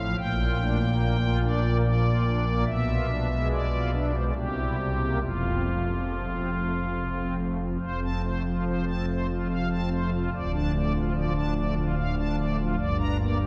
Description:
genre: classical, chorale-style piece for pipe organ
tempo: 72 BPM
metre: 3/4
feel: straight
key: F major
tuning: A4 = 439 Hz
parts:
  - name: pipe organ, strings celeste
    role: solo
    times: 0.0-13.5 s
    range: D1 to Bb5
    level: -27 LUFS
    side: equal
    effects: none
room: wet cathedral reverb, RT60 6.2 s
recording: recorded in a church or concert hall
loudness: -27 LUFS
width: mono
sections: 0.0-7.8 A section; 7.8-13.5 A section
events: none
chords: 0.2 Gm7/Bb; 2.7 Bdim7; 4.4 C7; 5.2 F; 10.3 Dm; 12.8 Gm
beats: | 0.18 1.01 1.84 | 2.67 3.51 4.35 | 5.22 6.09 6.95 | 7.82 8.66 9.49 | 10.33 11.15 11.97 | 12.79

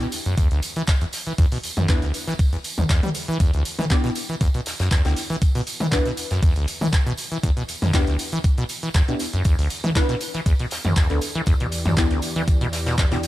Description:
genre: acid house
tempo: 119 BPM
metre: 4/4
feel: swing 53% on 16ths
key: E minor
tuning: A4 = 437 Hz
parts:
  - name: acid bass, saw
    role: riff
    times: 0.0-13.2 s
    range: D2 to G3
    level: -24 LUFS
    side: equal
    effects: lush chorus, ping-pong delay
  - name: deep mellow chord stab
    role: stabs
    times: 0.0-13.2 s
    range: B3 to B4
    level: -29 LUFS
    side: left 1 dB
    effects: ensemble chorus, ping-pong delay
  - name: loose indie drum kit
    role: drums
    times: 0.0-13.3 s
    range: hi-hat, snare drum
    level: -38 LUFS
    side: left 2 dB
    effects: none
  - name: punchy analog drum machine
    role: drums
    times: 0.0-13.3 s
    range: handclaps, hi-hat, toms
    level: -28 LUFS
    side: equal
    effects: none
  - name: tambourine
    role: percussion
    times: 0.0-13.3 s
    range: none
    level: -36 LUFS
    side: right 4 dB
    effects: none
  - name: electronic kick drum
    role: drums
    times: 0.4-13.1 s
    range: none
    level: -19 LUFS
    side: equal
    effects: none
  - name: warm analog pad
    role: sustained chords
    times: 11.5-13.3 s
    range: E2 to D5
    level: -27 LUFS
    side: equal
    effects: chorus, sidechain pumping
room: small room reverb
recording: none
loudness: -19 LUFS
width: side -16 dB against mid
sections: 0.0-13.3 A section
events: none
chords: 0.0 Em7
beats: 0.38 0.88 | 1.38 1.89 2.39 2.90 | 3.40 3.90 4.41 4.91 | 5.42 5.92 6.43 6.93 | 7.43 7.94 8.44 8.95 | 9.45 9.96 10.46 10.96 | 11.47 11.97 12.48 12.98

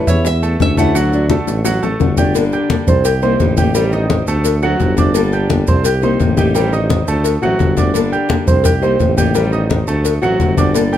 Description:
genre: latin, Cuban son and guajira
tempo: 172 BPM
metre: 4/4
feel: straight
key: G harmonic minor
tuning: A4 = 440 Hz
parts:
  - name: nylon-string guitar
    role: melody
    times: 0.0-2.0 s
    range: C#5 to F#5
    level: -22 LUFS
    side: right 1 dB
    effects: none
  - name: fingerpicked steel-string acoustic guitar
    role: accompaniment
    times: 0.0-11.0 s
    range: D3 to A4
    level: -20 LUFS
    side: left 4 dB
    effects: none
  - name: bright grand piano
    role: arpeggios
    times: 0.1-11.0 s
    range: F#3 to G6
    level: -19 LUFS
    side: right 4 dB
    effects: none
  - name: warm tuba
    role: bass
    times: 0.1-11.0 s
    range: G1 to E2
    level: -17 LUFS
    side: equal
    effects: none
  - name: bongos and cowbell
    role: percussion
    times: 0.1-10.9 s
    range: none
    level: -22 LUFS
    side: left 8 dB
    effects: none
  - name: congas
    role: percussion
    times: 0.1-11.0 s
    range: none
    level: -17 LUFS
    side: left 2 dB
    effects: none
  - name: maracas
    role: percussion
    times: 0.1-11.0 s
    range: none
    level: -29 LUFS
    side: right 6 dB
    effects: none
room: light reverb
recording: none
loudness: -12 LUFS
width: side -11 dB against mid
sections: 0.0-2.4 A section; 2.4-11.0 B section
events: drum fill 1.5-2.4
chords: 0.0 A7; 1.0 D; 2.4 Gmadd9; 3.0 Cm7; 3.8 Am7b5; 4.5 D7; 5.2 Gmadd9; 5.8 Cm7; 6.5 Am7b5; 7.2 D7; 8.0 Gmadd9; 8.7 Cm7; 9.3 Am7b5; 10.0 D7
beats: 0.25 0.60 | 0.95 1.30 1.65 2.00 | 2.35 2.70 3.05 3.40 | 3.75 4.10 4.45 4.80 | 5.15 5.50 5.85 6.20 | 6.55 6.90 7.25 7.60 | 7.95 8.30 8.65 9.00 | 9.35 9.70 10.05 10.40 | 10.75

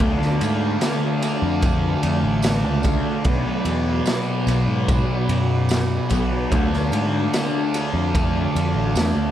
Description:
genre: psychedelic rock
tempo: 74 BPM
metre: 4/4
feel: straight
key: unclear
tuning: A4 = 440 Hz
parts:
  - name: combo organ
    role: sustained chords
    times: 0.0-9.3 s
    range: F4 to D5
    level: -30 LUFS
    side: right 2 dB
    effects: none
  - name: thick fuzz guitar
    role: riff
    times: 0.0-9.3 s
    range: B2 to D4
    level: -22 LUFS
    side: left 1 dB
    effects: distortion, phaser, tape echo
  - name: picked electric bass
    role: bass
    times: 0.0-9.3 s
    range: A1 to G#2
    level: -23 LUFS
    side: equal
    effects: none
  - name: raw garage drum kit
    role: drums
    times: 0.0-9.2 s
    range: kick drum, ride cymbal, snare drum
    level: -24 LUFS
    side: equal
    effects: tape echo
  - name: tambourine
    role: percussion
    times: 0.4-9.1 s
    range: none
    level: -42 LUFS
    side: right 7 dB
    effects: none
room: light reverb, small room ambience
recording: echo-heavy mix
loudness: -18 LUFS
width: side -11 dB against mid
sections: 0.0-9.3 A section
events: none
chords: 0.0 Dm; 3.3 Bm; 6.5 Dm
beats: | 0.01 0.82 1.63 2.45 | 3.26 4.08 4.89 5.70 | 6.52 7.33 8.15 8.96

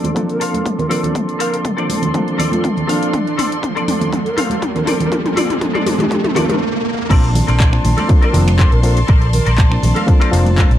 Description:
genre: nu-disco, nu disco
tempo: 121 BPM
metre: 4/4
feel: straight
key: Bb major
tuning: A4 = 444 Hz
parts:
  - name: reed electric piano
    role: accompaniment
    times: 0.0-10.8 s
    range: F3 to A5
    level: -21 LUFS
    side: equal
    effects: overdrive, fast tremolo, tape echo
  - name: warm studio string section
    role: sustained chords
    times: 0.0-10.8 s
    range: A4 to C6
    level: -27 LUFS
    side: left 1 dB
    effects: sidechain pumping, low-pass filter
  - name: semi-hollow electric guitar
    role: riff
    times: 0.0-10.8 s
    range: A4 to A5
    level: -24 LUFS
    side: left 3 dB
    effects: ensemble chorus, low-pass filter, tape echo
  - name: house drum kit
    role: drums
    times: 0.0-10.8 s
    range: crash cymbal, finger snaps, handclaps, hi-hat, ride cymbal, toms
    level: -22 LUFS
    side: left 1 dB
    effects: overdrive
  - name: congas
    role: percussion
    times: 0.0-10.6 s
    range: none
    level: -22 LUFS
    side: right 2 dB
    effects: none
  - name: riser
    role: sound effects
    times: 1.0-7.1 s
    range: none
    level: -25 LUFS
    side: right 1 dB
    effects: none
  - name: electronic kick drum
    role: drums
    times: 0.2-10.7 s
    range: none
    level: -14 LUFS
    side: equal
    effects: overdrive, high-pass filter on kick
  - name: mellow hollow silver concert flute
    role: melody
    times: 0.3-10.6 s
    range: D4 to Bb4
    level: -25 LUFS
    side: right 1 dB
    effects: tape echo
  - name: fingered electric bass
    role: bass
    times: 0.4-10.8 s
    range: F1 to Bb1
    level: -14 LUFS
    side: equal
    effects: high-pass filter
room: light reverb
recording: dark, warm production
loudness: -13 LUFS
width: side -12 dB against mid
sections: 0.0-7.1 A section; 7.1-10.8 B section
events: build-up 0.0-7.1; drum fill 0.0-6.6; filter sweep on clean electric guitar 0.0-7.1; filter sweep on string section 0.0-7.1; riser 1.0-7.1; break 6.6-7.1; drop 7.1-10.8; clean electric guitar fill 10.1-10.8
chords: 0.0 Bbmaj9; 6.9 N.C.; 7.1 Bbmaj9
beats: 0.16 0.66 | 1.15 1.65 2.15 2.64 | 3.14 3.63 4.13 4.62 | 5.12 5.62 6.11 6.61 | 7.11 7.60 8.10 8.59 | 9.09 9.58 10.08 10.58

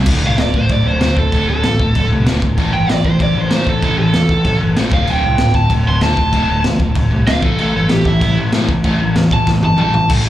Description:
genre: punk rock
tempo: 192 BPM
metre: 4/4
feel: straight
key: unclear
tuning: A4 = 440 Hz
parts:
  - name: sludgy distorted guitar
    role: riff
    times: 0.0-10.3 s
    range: D2 to A3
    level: -17 LUFS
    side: equal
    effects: overdrive
  - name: overdriven picked electric bass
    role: bass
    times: 0.0-10.3 s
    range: D1 to A2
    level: -18 LUFS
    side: equal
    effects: none
  - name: raw garage drum kit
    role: drums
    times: 0.1-10.2 s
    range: crash cymbal, kick drum, snare drum, toms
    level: -18 LUFS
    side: equal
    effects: none
  - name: overdriven electric guitar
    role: melody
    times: 0.3-10.1 s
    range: E4 to C6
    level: -19 LUFS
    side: right 1 dB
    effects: slapback echo, digital delay
room: small room reverb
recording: live gig heard through the venue's PA, club ambience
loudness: -12 LUFS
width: side -13 dB against mid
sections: 0.1-10.1 A section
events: overdriven electric guitar solo 0.1-10.1; drum fill 9.5-10.1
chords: 0.1 D5; 2.6 A5; 4.9 D5; 7.4 A5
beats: | 0.08 0.39 0.70 1.01 | 1.32 1.64 1.95 2.26 | 2.58 2.89 3.20 3.52 | 3.83 4.14 4.46 4.77 | 5.08 5.40 5.71 6.02 | 6.34 6.65 6.96 7.28 | 7.59 7.91 8.22 8.53 | 8.85 9.16 9.47 9.78 | 10.10

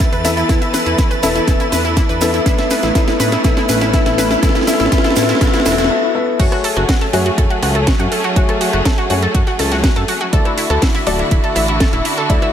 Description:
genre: progressive house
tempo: 122 BPM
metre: 4/4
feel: straight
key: F# minor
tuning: A4 = 440 Hz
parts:
  - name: rich symphonic string section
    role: sustained chords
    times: 0.0-12.5 s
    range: D3 to B4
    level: -23 LUFS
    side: right 1 dB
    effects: sidechain pumping
  - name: analog pluck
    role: arpeggios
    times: 0.0-12.5 s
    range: E4 to A5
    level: -20 LUFS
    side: equal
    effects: chorus, cassette tape, sidechain pumping, ping-pong delay
  - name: clear baby grand piano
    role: stabs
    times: 0.0-12.5 s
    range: A3 to E5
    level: -20 LUFS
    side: left 4 dB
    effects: sidechain pumping, low-pass filter, ping-pong delay
  - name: fat analog bass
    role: bass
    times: 0.0-12.4 s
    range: D1 to A2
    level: -20 LUFS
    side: equal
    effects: sidechain pumping
  - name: electronic kick drum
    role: drums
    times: 0.0-12.4 s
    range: none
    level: -16 LUFS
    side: equal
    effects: none
  - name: house drum kit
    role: drums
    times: 0.0-12.5 s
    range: crash cymbal, hi-hat, rim click, snare drum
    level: -20 LUFS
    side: equal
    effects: overdrive, sidechain pumping on hats, sidechain pumping on cymbals
  - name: egg shaker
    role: percussion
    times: 0.0-5.9 s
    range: none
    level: -28 LUFS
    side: right 6 dB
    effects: none
  - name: riser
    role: sound effects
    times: 0.0-5.9 s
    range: none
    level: -25 LUFS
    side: equal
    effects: none
  - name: drifting glass-harmonics texture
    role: texture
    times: 0.0-5.9 s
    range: A6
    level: -32 LUFS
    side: right 5 dB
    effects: none
  - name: open jazz drum kit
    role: drums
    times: 6.4-12.5 s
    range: hi-hat, ride cymbal, snare drum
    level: -30 LUFS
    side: right 2 dB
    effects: none
room: light reverb, small room ambience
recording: none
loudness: -12 LUFS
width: side -9 dB against mid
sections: 0.0-6.4 A section; 6.4-12.5 B section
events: build-up 0.0-6.4; drum fill 0.0-5.9; riser 0.0-5.9; filter sweep on string section 0.0-6.4; break 5.9-6.4; drop 6.4-12.5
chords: 0.0 Esus4; 2.5 A; 6.4 F#madd9; 10.3 Dadd9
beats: 0.00 | 0.49 0.98 1.48 1.97 | 2.46 2.95 3.44 3.94 | 4.43 4.92 5.41 5.90 | 6.39 6.89 7.38 7.87 | 8.36 8.85 9.35 9.84 | 10.33 10.82 11.31 11.80 | 12.30

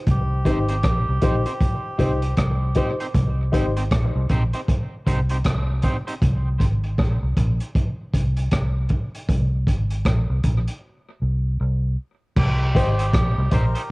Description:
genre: dub reggae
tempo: 78 BPM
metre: 4/4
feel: swing 61% on 16ths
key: C minor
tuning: A4 = 438 Hz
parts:
  - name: melodica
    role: melody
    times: 0.1-2.4, 12.4-13.9 s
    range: G4 to Bb4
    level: -30 LUFS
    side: right 1 dB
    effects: cassette tape, tape echo
  - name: vintage muted fingered electric bass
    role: bass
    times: 0.1-13.7 s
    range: Ab1 to C2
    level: -21 LUFS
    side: equal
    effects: none
  - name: crunchy breakbeat drum kit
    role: drums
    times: 0.1-13.9 s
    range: crash cymbal, hi-hat, kick drum, rim click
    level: -22 LUFS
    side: equal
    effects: cassette tape
  - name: dark grand piano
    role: stabs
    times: 0.4-3.7, 12.7-13.8 s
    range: Eb4 to C5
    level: -28 LUFS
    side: left 3 dB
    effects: high-pass filter, cassette tape, tape echo
  - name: electric guitar at the edge of break-up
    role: accompaniment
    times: 0.5-6.1, 12.8-13.8 s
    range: C4 to C5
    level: -32 LUFS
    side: right 2 dB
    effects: high-pass filter, cassette tape, tape echo
room: light reverb, studio reverb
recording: home recording on cassette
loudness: -19 LUFS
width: side -24 dB against mid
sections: 0.1-12.4 A section; 12.4-13.9 B section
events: break 0.1-12.4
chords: 0.1 Cm; 6.2 Abadd9 (rootless); 12.4 Cm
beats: | 0.07 0.84 1.61 2.37 | 3.14 3.91 4.68 5.45 | 6.21 6.98 7.75 8.52 | 9.29 10.06 10.82 11.59 | 12.36 13.13 13.90

